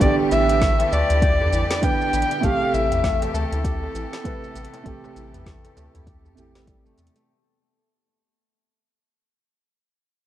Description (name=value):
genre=organic downtempo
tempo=99 BPM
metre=4/4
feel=swing 60% on 16ths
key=A minor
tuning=A4 = 440 Hz
part: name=warm kamancheh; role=melody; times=0.0-6.6 s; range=A4 to G5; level=-23 LUFS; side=left 1 dB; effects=ping-pong delay
part: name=felt-muted upright piano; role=accompaniment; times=0.0-7.3 s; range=C3 to B4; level=-26 LUFS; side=right 4 dB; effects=sidechain pumping, ping-pong delay
part: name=clear symphonic string section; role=sustained chords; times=0.0-7.2 s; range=D3 to G4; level=-32 LUFS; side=left 2 dB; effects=sidechain pumping
part: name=kora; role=arpeggios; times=0.0-9.2 s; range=E3 to A4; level=-34 LUFS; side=left 2 dB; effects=ping-pong delay
part: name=round analog bass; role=bass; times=0.0-7.1 s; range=G1 to E2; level=-25 LUFS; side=equal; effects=none
part: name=afro-pop drum kit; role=drums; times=0.0-7.3 s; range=hi-hat, shaker, snare drum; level=-32 LUFS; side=equal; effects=studio reverb
part: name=electronic kick drum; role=drums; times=0.0-6.8 s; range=none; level=-23 LUFS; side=equal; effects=overdrive, studio reverb
part: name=darbuka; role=percussion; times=0.8-7.1 s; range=none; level=-30 LUFS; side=equal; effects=none
room=moderate plate reverb, RT60 2.7 s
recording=rough home demo mix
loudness=-18 LUFS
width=side -12 dB against mid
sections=0.0-7.3 A section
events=fade-out 0.0-7.3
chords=0.0 G/A; 2.4 Am7